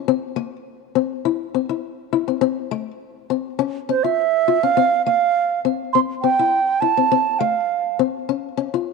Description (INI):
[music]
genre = highlife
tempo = 102 BPM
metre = 4/4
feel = straight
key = unclear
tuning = A4 = 438 Hz
[part]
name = fingerpicked acoustic archtop guitar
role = accompaniment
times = 0.0-8.9 s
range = A3 to F4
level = -21 LUFS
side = left 15 dB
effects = none
[part]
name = reedy baroque flute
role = melody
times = 3.9-8.0 s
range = C5 to C6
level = -18 LUFS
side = right 8 dB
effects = none
[sound]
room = moderate plate reverb, RT60 2.7 s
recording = 1960s-style stereo with parts hard left and right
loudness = -18 LUFS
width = side -3 dB against mid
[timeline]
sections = 0.0-8.9 A section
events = none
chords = 0.1 Bbsus2; 1.3 C; 2.4 Am; 3.6 Dbm; 4.8 F5; 5.9 C; 7.1 F; 8.3 Db